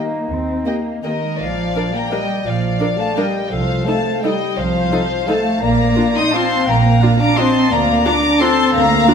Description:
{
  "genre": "classical",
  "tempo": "157-189 BPM",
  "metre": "3/4",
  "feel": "rubato",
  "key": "Bb major",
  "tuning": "A4 = 440 Hz",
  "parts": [
    { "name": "warm studio violin section", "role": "melody", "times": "0.0-9.1 s", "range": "Eb5 to Eb6", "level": "-22 LUFS", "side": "left 2 dB", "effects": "none" },
    { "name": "clear clarinet", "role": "second line", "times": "0.0-9.1 s", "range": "Eb4 to G5", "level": "-25 LUFS", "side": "left 2 dB", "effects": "none" },
    { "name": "mellow concert flute", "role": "second line", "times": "0.0-1.2 s", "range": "Eb5", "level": "-28 LUFS", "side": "left 5 dB", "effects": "none" },
    { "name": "warm chamber violin section", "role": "second line", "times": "0.0-9.1 s", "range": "Bb4 to C6", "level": "-22 LUFS", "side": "left 5 dB", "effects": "none" },
    { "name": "mellow French horn section", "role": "sustained chords", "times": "0.0-9.1 s", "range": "Eb3 to G4", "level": "-22 LUFS", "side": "left 3 dB", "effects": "none" },
    { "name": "dark chamber cello section", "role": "bass", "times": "0.0-9.1 s", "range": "Eb3 to Eb4", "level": "-21 LUFS", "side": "right 2 dB", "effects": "none" },
    { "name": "warm chamber double bass section", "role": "bass", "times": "0.3-9.0 s", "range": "Bb1 to Eb2", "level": "-21 LUFS", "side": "right 4 dB", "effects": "none" },
    { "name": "warm chamber viola section", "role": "accompaniment", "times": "0.7-9.1 s", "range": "Bb3 to Bb4", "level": "-23 LUFS", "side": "right 1 dB", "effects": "none" }
  ],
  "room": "wet recital hall reverb, RT60 1.7 s",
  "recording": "none",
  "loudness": "-14 LUFS",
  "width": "side -6 dB against mid",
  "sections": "0.0-1.4 A section; 1.4-9.1 B section",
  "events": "none",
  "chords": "0.0 Eb; 1.4 Bb; 3.5 F7/C; 5.6 Bb; 7.7 Bb/D"
}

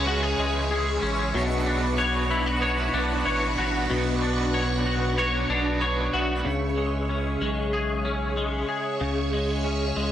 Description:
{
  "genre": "dream pop",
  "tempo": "94 BPM",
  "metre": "4/4",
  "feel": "straight",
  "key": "unclear",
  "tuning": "A4 = 440 Hz",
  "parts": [
    { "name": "overdriven electric guitar", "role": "accompaniment", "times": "0.0-7.0 s", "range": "B2 to C#5", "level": "-31 LUFS", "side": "right 4 dB", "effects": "tremolo, wide subtle chorus" },
    { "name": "phased string machine", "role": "sustained chords", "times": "0.0-10.1 s", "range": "D4 to C#6", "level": "-30 LUFS", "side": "equal", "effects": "ensemble chorus, phaser" },
    { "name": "twangy electric guitar", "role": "arpeggios", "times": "0.0-10.1 s", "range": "B2 to C#5", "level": "-26 LUFS", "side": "left 2 dB", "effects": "ensemble chorus, tape echo" },
    { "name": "saturated sub bass", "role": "bass", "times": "0.0-10.1 s", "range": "A1 to C#2", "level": "-29 LUFS", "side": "equal", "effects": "none" },
    { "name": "twinkling granular texture", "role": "texture", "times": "0.0-6.9 s", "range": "E4 to F#5", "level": "-40 LUFS", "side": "equal", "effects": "built-in reverb, tape echo" }
  ],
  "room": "light reverb",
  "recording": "dry, gritty hardware recording",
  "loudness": "-23 LUFS",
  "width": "side -11 dB against mid",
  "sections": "0.0-6.5 A section; 6.5-10.1 B section",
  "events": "none",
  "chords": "0.0 C#m; 1.3 Bmadd9; 6.5 C#m"
}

